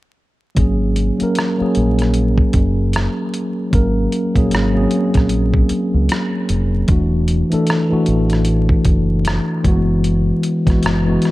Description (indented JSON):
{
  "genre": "R&B, neo-soul",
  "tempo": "76 BPM",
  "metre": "4/4",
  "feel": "swing 60% on 16ths",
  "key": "unclear",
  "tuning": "A4 = 440 Hz",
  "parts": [
    { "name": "mellow tine electric piano", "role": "accompaniment", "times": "0.6-11.3 s", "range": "E3 to Bb4", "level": "-16 LUFS", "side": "equal", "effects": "medium stereo tremolo" },
    { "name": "deep dub fingered electric bass", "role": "bass", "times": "0.6-11.2 s", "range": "E1 to Db2", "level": "-18 LUFS", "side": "equal", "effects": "none" },
    { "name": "dusty soul sampler-style drum kit", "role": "drums", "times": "0.6-11.3 s", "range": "hi-hat, kick drum, rim click", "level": "-19 LUFS", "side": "equal", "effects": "none" }
  ],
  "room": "light reverb",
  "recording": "dark, warm production, vinyl crackle",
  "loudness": "-14 LUFS",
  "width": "side -18 dB against mid",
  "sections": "0.6-11.3 A section",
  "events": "none",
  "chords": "0.6 Ab9sus4; 6.9 E9sus4; 9.6 Gb9sus4"
}